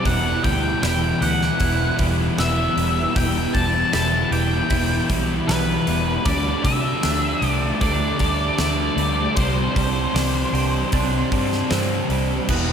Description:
rock, shoegaze and dream pop; 77 BPM; 4/4; straight; A4 = 439 Hz
octave-fuzz lead guitar; melody; 0.0-11.7 s; B4 to A5; -25 LUFS; left 1 dB; distortion, analog delay
twelve-string electric guitar; arpeggios; 0.0-12.7 s; G3 to G4; -31 LUFS; right 6 dB; analog chorus, analog delay
crunchy overdriven guitar; riff; 0.0-12.7 s; C3 to G4; -26 LUFS; right 8 dB; reverse reverb
thick fuzz guitar; riff; 0.0-12.7 s; E2 to D4; -25 LUFS; left 7 dB; distortion, analog chorus
vintage muted fingered electric bass; bass; 0.1-12.7 s; E1 to C3; -24 LUFS; equal
huge arena drum kit; drums; 0.1-12.7 s; crash cymbal, hi-hat, kick drum, snare drum; -26 LUFS; equal
wet plate reverb, RT60 2.4 s; dreamy mix soaked in reverb; -18 LUFS; side -7 dB against mid
0.0-12.5 A section
0.1 Em; 6.3 Dsus4; 9.4 Csus2
| 0.06 0.83 1.61 2.38 | 3.16 3.93 4.71 5.49 | 6.26 7.04 7.82 8.60 | 9.38 10.15 10.93 11.71 | 12.49

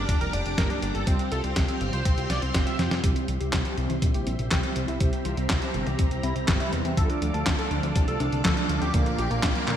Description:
italo disco; 122 BPM; 4/4; straight; A4 = 440 Hz
wide unison lead; melody; 0.0-9.8 s; Bb3 to E5; -32 LUFS; equal; analog chorus, ping-pong delay
string machine, full ensemble; sustained chords; 0.0-9.8 s; G4 to D6; -35 LUFS; equal; ensemble chorus
mellow synth brass; stabs; 0.0-9.8 s; G2 to G4; -34 LUFS; right 4 dB; chorus
fat analog bass; bass; 0.0-9.8 s; F1 to Bb2; -30 LUFS; equal
dusty soul sampler-style drum kit; drums; 0.1-9.8 s; handclaps, hi-hat, snare drum; -30 LUFS; equal; gated reverb
electronic kick drum; drums; 0.1-9.5 s; -26 LUFS; equal
warbly dusty pluck; arpeggios; 3.0-9.8 s; C3 to D4; -35 LUFS; left 3 dB
moderate lush hall reverb, RT60 2.6 s; bright 1980s-style digital production; -23 LUFS; side -10 dB against mid
0.0-3.0 A section; 3.0-9.8 B section
filter sweep on analog polysynth 0.0-3.0; drum fill 2.8; filter sweep on string machine 3.0-9.8; filter sweep on analog synth lead 3.0-9.8
0.0 Gm; 1.1 Csus4; 3.0 C; 7.0 Dm; 8.9 Bb
0.09 0.58 | 1.07 1.56 2.06 2.55 | 3.04 3.53 4.02 4.51 | 5.00 5.50 5.99 6.48 | 6.97 7.46 7.96 8.45 | 8.94 9.43

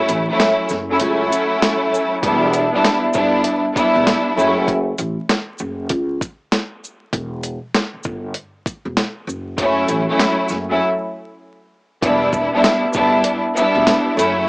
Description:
hip hop, boom-bap hip-hop; 98 BPM; 4/4; swing 63% on 16ths; E dorian; A4 = 439 Hz
clear studio string section; accompaniment; 0.0-4.7, 9.6-14.5 s; F#3 to E4; -15 LUFS; equal; cassette tape, high-pass filter, low-pass filter
upright bass; bass; 0.1-14.5 s; E1 to C#2; -24 LUFS; equal
dusty soul sampler-style drum kit; drums; 0.1-14.4 s; hi-hat, kick drum, shaker, snare drum; -19 LUFS; equal; cassette tape
light reverb, small room ambience; home recording on cassette, vinyl crackle, small speaker sound; -15 LUFS; side -31 dB against mid
0.0-12.0 A section; 12.0-14.5 B section
break 0.0-2.2, 4.7-9.6, 10.8-12.0
0.0 F#m7; 2.2 Em7; 4.4 F#m; 7.1 Em; 9.3 F#m7; 12.0 Em7
0.39 1.01 1.62 | 2.23 2.84 3.46 4.07 | 4.68 5.29 5.90 6.52 | 7.13 7.74 8.35 8.96 | 9.58 10.19 10.80 11.41 | 12.03 12.64 13.25 13.86 | 14.47

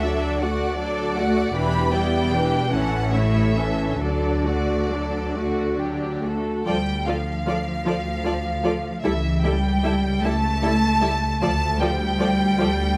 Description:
classical, slow romantic movement for string orchestra; 44-54 BPM (dotted quarters); 6/8; rubato; D major, D minor from 6.7 s; A4 = 439 Hz
rich studio violin section; melody; 0.0-13.0 s; D5 to B5; -30 LUFS; equal
clear studio violin section; second line; 0.0-12.7 s; C#4 to F#5; -32 LUFS; equal
clear symphonic viola section; accompaniment; 0.0-12.7 s; E3 to F#4; -28 LUFS; equal
rich chamber cello section; bass; 0.0-13.0 s; D2 to A3; -29 LUFS; equal
rich chamber double bass section; bass; 0.0-13.0 s; E1 to D2; -28 LUFS; equal
moderate recital hall reverb, RT60 1.4 s; -22 LUFS; mono
0.0-6.7 A section; 6.7-13.0 B section
0.0 D; 1.5 Em7; 2.7 A; 4.0 D; 6.7 Dm; 9.0 A7/C#; 11.4 Dm
0.42 | 1.55 2.71 | 4.00 5.36 | 6.66 7.86 | 9.04 10.22 | 11.41 12.58

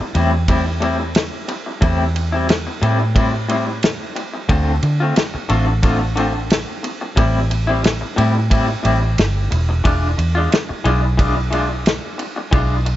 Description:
straight-eighth soul blues; 90 BPM; 4/4; swing 54% on 16ths; A minor; A4 = 441 Hz
electric guitar through a small old amp; stabs; 0.0-12.9 s; A2 to F4; -21 LUFS; left 2 dB; tremolo, analog delay
vintage muted fingered electric bass; bass; 0.0-13.0 s; E1 to D3; -18 LUFS; equal
warm soul drum kit; drums; 0.1-13.0 s; kick drum, ride cymbal, snare drum; -20 LUFS; equal
little or no reverb; nothing above 7.7 kHz; -15 LUFS; side -14 dB against mid
0.0-13.0 A section
0.0 Am7; 4.5 Dm7; 7.2 Am7; 9.9 E7b9
0.49 1.16 | 1.82 2.49 3.16 3.83 | 4.50 5.17 5.84 6.51 | 7.18 7.85 8.52 9.18 | 9.85 10.52 11.19 11.86 | 12.53

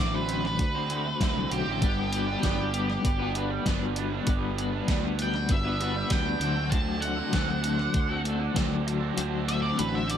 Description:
indie rock; 98 BPM; 4/4; straight; G major; A4 = 441 Hz
octave-fuzz lead guitar; melody; 0.0-10.2 s; G4 to A5; -32 LUFS; right 2 dB; distortion, analog delay
raw garage guitar; riff; 0.0-10.2 s; D3 to C5; -34 LUFS; right 11 dB; overdrive, analog chorus, analog delay
twelve-string electric guitar; riff; 0.0-10.2 s; D3 to C5; -31 LUFS; left 8 dB; tremolo
fuzz fingered electric bass; bass; 0.0-10.2 s; G1 to D2; -31 LUFS; equal; overdrive
gated 80s digital drum machine; drums; 0.3-10.2 s; hi-hat, kick drum, snare drum; -28 LUFS; equal; gated reverb, gated reverb snare, overdrive
light reverb; -25 LUFS; side -9 dB against mid
0.0-10.2 A section
lead electric guitar solo 0.0-10.2; kick and snare drop out 9.2-10.2
0.0 D7; 1.8 Gmaj7; 6.4 D7
0.60 1.21 | 1.82 2.44 3.05 3.66 | 4.28 4.89 5.50 6.12 | 6.73 7.34 7.95 8.57 | 9.18 9.79

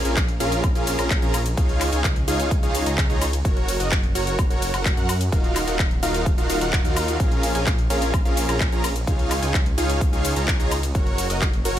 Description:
EDM, festival progressive house; 128 BPM; 4/4; straight; Bb minor; A4 = 437 Hz
supersaw chords; riff; 0.0-11.8 s; Db4 to Bb5; -24 LUFS; right 1 dB; sidechain pumping, dub echo
detuned saw bass; bass; 0.0-11.8 s; Eb1 to Gb2; -26 LUFS; equal; sidechain pumping
house drum kit; drums; 0.1-11.8 s; handclaps, hi-hat, ride cymbal, shaker, woodblock; -28 LUFS; left 2 dB; small room reverb
electronic kick drum; drums; 0.2-11.5 s; -22 LUFS; equal; small room reverb
little or no reverb; -19 LUFS; side -11 dB against mid
0.0-11.8 A section
0.0 Bbm7; 1.6 Dbadd9; 3.4 Gb; 5.3 Ebmadd9; 7.2 Bbm7; 9.1 Dbadd9; 10.9 Gb
0.17 0.64 1.10 | 1.57 2.04 2.51 2.98 | 3.45 3.92 4.39 4.86 | 5.32 5.79 6.26 6.73 | 7.20 7.67 8.14 8.61 | 9.07 9.54 10.01 10.48 | 10.95 11.42

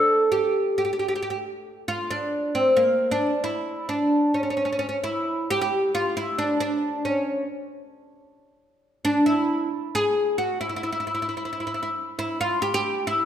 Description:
calypso; 134 BPM; 4/4; swing 53% on 16ths; A4 = 439 Hz
oud; solo; 0.0-13.3 s; Bb3 to A4; -22 LUFS; equal
moderate scoring stage reverb, RT60 1.6 s; -22 LUFS; side -10 dB against mid
0.0-5.5 A section; 5.5-13.3 B section
| 0.09 0.54 0.99 1.44 | 1.89 2.34 2.79 3.24 | 3.69 4.14 4.58 5.03 | 5.48 5.93 6.37 6.82 | 7.27 7.71 8.16 8.60 | 9.05 9.49 9.94 10.38 | 10.83 11.28 11.72 12.17 | 12.61 13.06

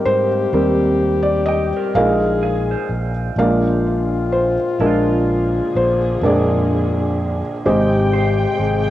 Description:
acoustic folk-pop ballad; 42 BPM (dotted quarters); 6/8; straight; A4 = 440 Hz
felt-muted upright piano; melody; 0.0-8.9 s; Ab1 to F5; -17 LUFS; right 1 dB; cassette tape, tape echo
warm French horn; second line; 0.0-8.9 s; F4 to Ab4; -22 LUFS; left 6 dB
fretless electric bass; bass; 0.1-8.9 s; Ab1 to Ab2; -22 LUFS; equal
electric guitar through a small old amp; arpeggios; 1.5-8.9 s; F4 to G5; -29 LUFS; right 7 dB; tremolo
warm studio string section; sustained chords; 4.8-8.9 s; C3 to G5; -26 LUFS; right 1 dB
light reverb, studio ambience; home recording on cassette; -15 LUFS; side -13 dB against mid
0.0-8.9 A section
0.0 Abmaj9; 1.9 Bb7sus4; 3.4 Bb7; 7.7 Abmaj7
0.53 | 1.95 3.38 | 4.81 6.24 | 7.66

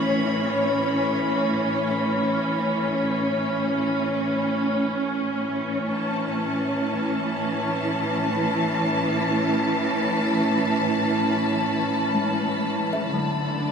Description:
ambient; free time; A major; A4 = 440 Hz
clear symphonic string section; sustained chords; 0.0-13.7 s; A2 to A5; -22 LUFS; equal
analog drone; drone; 0.0-5.1 s; A3; -34 LUFS; equal
drifting glass-harmonics texture; texture; 0.0-13.7 s; B5; -34 LUFS; equal; chorus, built-in reverb
kalimba; arpeggios; 8.3-13.7 s; F#3 to B5; -30 LUFS; left 4 dB; diffuse ambient delay
wet huge ambient reverb, RT60 8.3 s; lossy compression artefacts; -21 LUFS; side -6 dB against mid
0.0-5.0 A section; 5.0-13.7 B section
fade-in on kalimba 5.0-13.7; fade-in on synth texture 5.0-13.7
0.0 A; 13.1 Bm
free time

